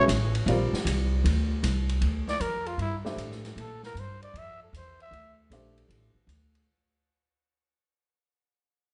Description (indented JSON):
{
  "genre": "modal jazz",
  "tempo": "155 BPM",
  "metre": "4/4",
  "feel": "swing 67% on 8ths",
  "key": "unclear",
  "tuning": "A4 = 440 Hz",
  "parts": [
    { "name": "growling trumpet", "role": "melody", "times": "0.0-5.4 s", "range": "E4 to E5", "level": "-33 LUFS", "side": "equal", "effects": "none" },
    { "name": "warm baby grand piano", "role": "accompaniment", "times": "0.0-6.1 s", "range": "G3 to E5", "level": "-33 LUFS", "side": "equal", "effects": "none" },
    { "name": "upright bass", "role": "bass", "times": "0.0-6.7 s", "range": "A1 to Bb2", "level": "-30 LUFS", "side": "equal", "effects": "none" },
    { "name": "open jazz drum kit", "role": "drums", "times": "0.1-6.6 s", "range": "hi-hat, ride cymbal, snare drum", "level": "-40 LUFS", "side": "equal", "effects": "none" }
  ],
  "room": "moderate scoring stage reverb, RT60 1.7 s",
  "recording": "recorded in a church or concert hall, nothing above 10.3 kHz",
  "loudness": "-28 LUFS",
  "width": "mono",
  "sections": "0.0-6.7 A section",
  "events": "fade-out 0.0-6.7; trumpet solo 0.0-6.7",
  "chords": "0.5 Bbmaj9"
}